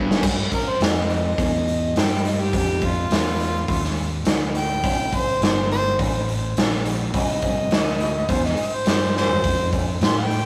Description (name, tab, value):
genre	blues rock power trio and southern rock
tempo	104 BPM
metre	4/4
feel	straight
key	unclear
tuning	A4 = 439 Hz
part	fuzz fingered electric bass	bass	0.0-10.5 s	G1 to A2	-28 LUFS	equal	overdrive
part	raw garage drum kit	drums	0.1-10.4 s	crash cymbal, hi-hat, kick drum, snare drum, toms	-24 LUFS	equal	none
part	warm harmonica	melody	0.5-10.5 s	F4 to C6	-27 LUFS	equal	overdrive, digital delay
room	light reverb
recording	rough rehearsal-room recording, tube saturation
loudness	-21 LUFS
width	mono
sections	0.2-10.5 A section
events	drum fill 0.0, 9.2; harmonica solo 0.2-10.5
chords	0.2 Emmaj7; 2.5 Dmadd9; 4.8 C7(no3); 9.4 F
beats	| 0.24 0.81 1.38 1.96 | 2.53 3.11 3.68 4.26 | 4.83 5.41 5.99 6.56 | 7.14 7.71 8.29 8.87 | 9.44 10.02